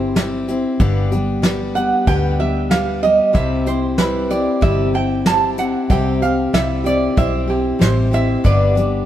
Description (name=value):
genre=honky-tonk and classic country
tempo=94 BPM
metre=4/4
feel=straight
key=C major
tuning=A4 = 440 Hz
part: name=lap resonator guitar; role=second line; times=0.0-9.1 s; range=G4 to A5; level=-19 LUFS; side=right 3 dB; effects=none
part: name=picked steel-string acoustic guitar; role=accompaniment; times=0.0-9.1 s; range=G2 to G4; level=-19 LUFS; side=left 2 dB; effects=none
part: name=vintage muted fingered electric bass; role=bass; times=0.0-9.0 s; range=G1 to D2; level=-21 LUFS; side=equal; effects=none
part: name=soft brush drum kit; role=drums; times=0.2-8.9 s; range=hi-hat, kick drum, snare drum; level=-19 LUFS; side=equal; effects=none
room=moderate plate reverb, RT60 2.8 s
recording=heard from further back in the room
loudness=-14 LUFS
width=side -11 dB against mid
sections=0.0-9.1 A section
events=resonator guitar played with a steel bar solo 0.0-9.1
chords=0.0 C; 0.8 G; 3.4 C; 8.4 G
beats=0.17 | 0.81 1.44 2.08 2.72 | 3.35 3.99 4.63 5.26 | 5.90 6.54 7.17 7.81 | 8.45